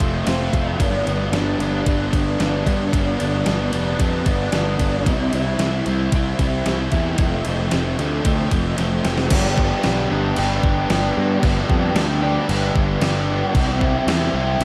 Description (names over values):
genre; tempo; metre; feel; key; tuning
rock, shoegaze and dream pop; 113 BPM; 4/4; straight; G mixolydian; A4 = 440 Hz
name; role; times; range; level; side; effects
biting overdriven guitar; riff; 0.0-14.6 s; F2 to G4; -23 LUFS; equal; analog chorus
fuzz picked electric bass; bass; 0.0-14.6 s; F1 to G2; -25 LUFS; equal; overdrive
crisp 8-bit digital drum machine; drums; 0.0-14.6 s; crash cymbal, kick drum, ride cymbal, snare drum; -25 LUFS; equal; none
room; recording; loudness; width
wet lush hall reverb, RT60 2.7 s; dreamy mix soaked in reverb; -20 LUFS; mono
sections
0.0-9.3 A section; 9.3-14.6 B section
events
drum fill 8.8-9.3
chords
0.0 F; 0.8 G; 5.1 C; 7.2 F; 9.3 G; 13.5 C